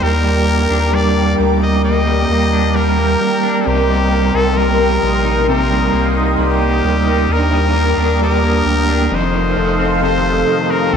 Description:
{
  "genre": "dream pop",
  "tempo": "66 BPM",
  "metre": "4/4",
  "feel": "straight",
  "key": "unclear",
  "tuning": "A4 = 440 Hz",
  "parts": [
    { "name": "trumpet with straight mute", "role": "melody", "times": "0.0-11.0 s", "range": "G4 to Eb5", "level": "-20 LUFS", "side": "left 2 dB", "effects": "tape echo" },
    { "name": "raw garage guitar", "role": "accompaniment", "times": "0.0-11.0 s", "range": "C3 to Eb4", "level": "-20 LUFS", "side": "right 5 dB", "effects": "overdrive, tremolo, lush chorus" },
    { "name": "lush unison pad", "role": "sustained chords", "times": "0.0-11.0 s", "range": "A4 to Eb6", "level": "-19 LUFS", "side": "left 1 dB", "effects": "chorus, phaser" },
    { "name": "semi-hollow electric guitar", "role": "arpeggios", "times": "0.0-11.0 s", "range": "F2 to Eb4", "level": "-19 LUFS", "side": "left 2 dB", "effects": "lush chorus, tape echo" },
    { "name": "warm sub bass", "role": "bass", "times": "0.0-11.0 s", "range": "F1 to Eb2", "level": "-18 LUFS", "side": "equal", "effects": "none" }
  ],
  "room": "moderate lush hall reverb, RT60 2.6 s",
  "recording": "dark, warm production",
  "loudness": "-12 LUFS",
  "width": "side -7 dB against mid",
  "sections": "0.0-10.9 A section",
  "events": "none",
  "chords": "0.0 Ebmaj7; 3.7 Cm7; 7.3 Ebmaj7; 9.1 F7",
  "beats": "| 0.02 0.93 1.84 2.75 | 3.66 4.57 5.48 6.39 | 7.29 8.21 9.11 10.02 | 10.93"
}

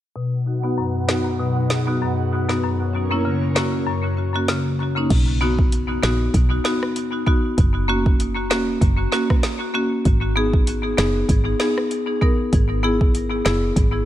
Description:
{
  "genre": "dancehall",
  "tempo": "97 BPM",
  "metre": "4/4",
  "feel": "swing 56% on 16ths",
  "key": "B major",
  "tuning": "A4 = 441 Hz",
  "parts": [
    { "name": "marimba with hard mallets", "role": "accompaniment", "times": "0.2-13.6 s", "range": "F#2 to A#4", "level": "-21 LUFS", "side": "left 1 dB", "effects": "sidechain pumping, low-pass filter, analog delay" },
    { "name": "airy breathy pad", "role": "sustained chords", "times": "0.3-5.1 s", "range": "F#2 to F#5", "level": "-29 LUFS", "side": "right 3 dB", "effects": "chorus, phaser, sidechain pumping, low-pass filter" },
    { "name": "afro-pop drum kit", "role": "drums", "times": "1.1-13.9 s", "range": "crash cymbal, hi-hat, kick drum, rim click, snare drum", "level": "-20 LUFS", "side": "equal", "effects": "vintage 12-bit sampler grit" },
    { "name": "woody FM bass", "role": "bass", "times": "5.1-14.0 s", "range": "E1 to B1", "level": "-22 LUFS", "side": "equal", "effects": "none" }
  ],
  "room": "digital ambience",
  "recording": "echo-heavy mix",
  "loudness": "-18 LUFS",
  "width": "side -12 dB against mid",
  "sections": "0.2-5.1 A section; 5.1-14.1 B section",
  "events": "filter sweep 0.2-5.1; kick muted 3.9-5.1",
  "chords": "0.2 B; 2.6 F#; 5.1 B; 7.6 F#; 10.1 G#m; 12.5 E",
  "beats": "| 0.16 0.78 1.39 2.01 | 2.63 3.25 3.87 4.49 | 5.11 5.72 6.34 6.96 | 7.58 8.20 8.82 9.44 | 10.05 10.67 11.29 11.91 | 12.53 13.15 13.77"
}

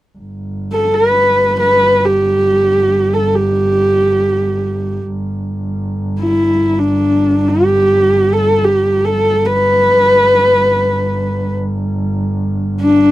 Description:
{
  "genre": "mongolian traditional, Mongolian folk",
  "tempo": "free time",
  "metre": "none",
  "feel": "none",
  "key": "G gong mode",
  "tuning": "A4 = 439 Hz",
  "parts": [
    { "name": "rich double bass", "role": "drone", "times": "0.2-13.1 s", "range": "G1", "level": "-18 LUFS", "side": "right 1 dB", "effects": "stereo widening" },
    { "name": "dark horsehead fiddle", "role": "melody", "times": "0.7-13.1 s", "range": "D4 to B4", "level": "-11 LUFS", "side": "equal", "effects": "none" }
  ],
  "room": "little or no reverb",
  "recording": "dry, close 1970s-style studio recording",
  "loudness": "-11 LUFS",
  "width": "side -15 dB against mid",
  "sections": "0.2-13.1 A section",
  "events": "none",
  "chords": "none",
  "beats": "free time"
}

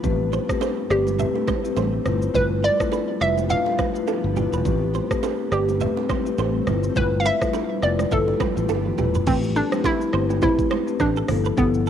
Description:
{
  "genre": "afrobeats",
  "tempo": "104 BPM",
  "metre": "4/4",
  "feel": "swing 58% on 16ths",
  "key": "A minor",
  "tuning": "A4 = 440 Hz",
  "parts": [
    { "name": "marimba with medium mallets", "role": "accompaniment", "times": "0.0-11.9 s", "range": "F3 to B4", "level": "-26 LUFS", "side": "left 9 dB", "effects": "cassette tape" },
    { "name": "granular cloud pad", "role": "sustained chords", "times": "0.0-9.2 s", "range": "F3 to C4", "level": "-31 LUFS", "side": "right 2 dB", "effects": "built-in reverb, cassette tape" },
    { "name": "fingered electric bass", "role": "bass", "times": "0.0-11.9 s", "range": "E1 to A1", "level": "-25 LUFS", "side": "right 1 dB", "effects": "none" },
    { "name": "afro-pop drum kit", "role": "drums", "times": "0.0-11.9 s", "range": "crash cymbal, hi-hat, kick drum, rim click, shaker, toms", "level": "-28 LUFS", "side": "equal", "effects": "overdrive, cassette tape" },
    { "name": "congas and bongos", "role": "percussion", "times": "0.0-11.7 s", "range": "none", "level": "-30 LUFS", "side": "right 11 dB", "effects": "none" },
    { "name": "direct-recorded clean electric guitar", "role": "riff", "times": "0.3-11.9 s", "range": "G4 to E5", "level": "-32 LUFS", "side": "right 9 dB", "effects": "ensemble chorus, cassette tape, analog delay" },
    { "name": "hollow square pluck", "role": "melody", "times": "0.9-11.9 s", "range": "B3 to F5", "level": "-23 LUFS", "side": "right 1 dB", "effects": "chorus, cassette tape, analog delay" }
  ],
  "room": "light reverb, digital ambience",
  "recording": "home recording on cassette",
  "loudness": "-19 LUFS",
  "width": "side -9 dB against mid",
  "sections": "0.0-9.3 A section; 9.3-11.9 B section",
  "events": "drum fill 8.7-9.3",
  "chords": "0.0 Am9; 2.1 G13; 4.7 Am9; 6.7 G13; 9.3 Am9; 11.3 G13",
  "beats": "| 0.04 0.61 1.19 1.77 | 2.35 2.92 3.50 4.08 | 4.65 5.23 5.81 6.38 | 6.96 7.54 8.11 8.69 | 9.27 9.85 10.42 11.00 | 11.58"
}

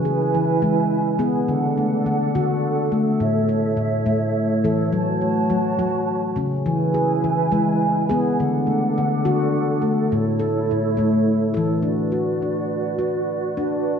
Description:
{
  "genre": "world meditative, meditative tuned percussion",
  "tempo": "70 BPM (dotted quarters)",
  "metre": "6/8",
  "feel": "straight",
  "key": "unclear",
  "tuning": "A4 = 439 Hz",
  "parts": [
    { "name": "mellow large flute ensemble", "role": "sustained chords", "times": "0.0-14.0 s", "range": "D4 to A5", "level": "-23 LUFS", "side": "right 4 dB", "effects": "none" },
    { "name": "handpan", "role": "arpeggios", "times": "0.0-14.0 s", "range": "A2 to A4", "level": "-20 LUFS", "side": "left 2 dB", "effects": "none" }
  ],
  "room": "wet echo chamber reverb, RT60 1.7 s, small room ambience",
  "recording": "none",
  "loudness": "-18 LUFS",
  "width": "side -7 dB against mid",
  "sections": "0.0-11.8 A section; 11.8-14.0 B section",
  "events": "none",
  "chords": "0.0 E; 1.5 D; 3.2 A; 4.9 F#m; 6.7 E; 8.4 D; 10.1 A; 11.8 Bm",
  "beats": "0.62 | 1.49 2.35 | 3.21 4.07 | 4.94 5.80 | 6.66 7.52 | 8.39 9.25 | 10.11 10.98 | 11.84 12.71 | 13.57"
}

